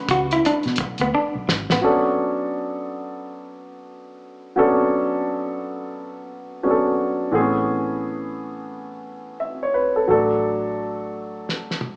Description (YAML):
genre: R&B, neo-soul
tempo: 87 BPM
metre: 4/4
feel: swing 63% on 16ths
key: B dorian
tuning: A4 = 440 Hz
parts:
  - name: warm upright piano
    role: accompaniment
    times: 0.0-12.0 s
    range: D3 to B5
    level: -24 LUFS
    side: equal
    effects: none
  - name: clean electric guitar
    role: second line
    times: 0.1-1.8 s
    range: B3 to F#4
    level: -23 LUFS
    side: equal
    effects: none
  - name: vintage muted fingered electric bass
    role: bass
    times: 0.1-1.8, 7.3-12.0 s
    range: G#1 to B2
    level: -33 LUFS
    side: equal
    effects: none
  - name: cloth-damped thuddy drum kit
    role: drums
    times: 0.1-1.8, 11.5-12.0 s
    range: hi-hat, kick drum, snare drum, toms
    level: -27 LUFS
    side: equal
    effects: none
room: moderate large studio reverb, RT60 1.3 s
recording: band playing live in one room, small speaker sound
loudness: -22 LUFS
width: mono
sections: 0.0-1.8 A section; 1.8-12.0 B section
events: drum fill 1.1-1.8, 11.5-12.0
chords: 0.0 Bm9; 7.3 Amaj9; 10.1 D/A